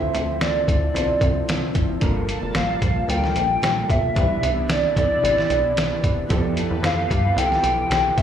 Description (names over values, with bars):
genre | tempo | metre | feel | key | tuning
indie pop, bedroom pop | 112 BPM | 4/4 | swing 55% on 16ths | C major | A4 = 441 Hz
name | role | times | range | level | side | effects
warbly nostalgic lead | melody | 0.0-8.2 s | D5 to G5 | -22 LUFS | equal | analog chorus, slapback echo, tape echo
mellow electric guitar | accompaniment | 0.0-8.2 s | C3 to A4 | -29 LUFS | left 3 dB | ensemble chorus, warbly pitch drift, slapback echo
soft electric-piano-like synth keys | accompaniment | 0.0-8.2 s | B3 to C5 | -31 LUFS | right 5 dB | chorus, cassette tape, slapback echo
lush unison pad | sustained chords | 0.0-8.2 s | D3 to A5 | -32 LUFS | right 2 dB | chorus, phaser
plucky analog bass | bass | 0.0-8.2 s | E1 to G2 | -25 LUFS | equal | none
lo-fi sampler-style drum kit | drums | 0.1-8.2 s | hi-hat, kick drum, snare drum | -23 LUFS | equal | none
room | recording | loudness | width
light reverb | live gig heard through the venue's PA, club reverb, lossy compression artefacts | -18 LUFS | side -9 dB against mid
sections
0.0-8.2 A section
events
none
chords
0.0 Dm9; 2.0 Gm9; 4.2 Cmaj9; 6.3 Fmaj9#11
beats
0.41 0.95 1.48 | 2.02 2.55 3.09 3.62 | 4.16 4.70 5.23 5.77 | 6.30 6.84 7.37 7.91